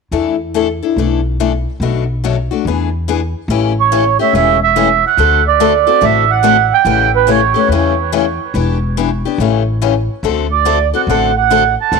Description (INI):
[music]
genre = acoustic string swing (jazz manouche)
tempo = 142 BPM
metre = 4/4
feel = swing 64% on 8ths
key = A mixolydian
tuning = A4 = 440 Hz
[part]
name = picked steel-string acoustic guitar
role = accompaniment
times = 0.1-12.0 s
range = B2 to A4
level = -16 LUFS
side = left 12 dB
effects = none
[part]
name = upright bass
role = bass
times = 0.1-12.0 s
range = E1 to E2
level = -18 LUFS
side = left 1 dB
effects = none
[part]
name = mellow accordion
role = melody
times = 3.8-7.7, 10.5-12.0 s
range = B4 to A5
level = -12 LUFS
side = right 14 dB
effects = tape echo
[sound]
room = light reverb, small room reverb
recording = 1960s-style stereo with parts hard left and right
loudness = -11 LUFS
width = side -4 dB against mid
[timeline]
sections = 0.1-3.5 A section; 3.5-12.0 B section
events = none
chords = 0.1 E7sus4; 1.8 Bm7; 2.7 E7; 3.5 A7; 5.2 D7; 6.9 A7; 8.5 Em7; 9.4 A7; 10.2 D7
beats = | 0.12 0.54 0.97 1.39 | 1.81 2.23 2.65 3.07 | 3.49 3.91 4.33 4.76 | 5.18 5.60 6.02 6.44 | 6.86 7.28 7.71 8.13 | 8.55 8.97 9.39 9.81 | 10.23 10.66 11.08 11.50 | 11.92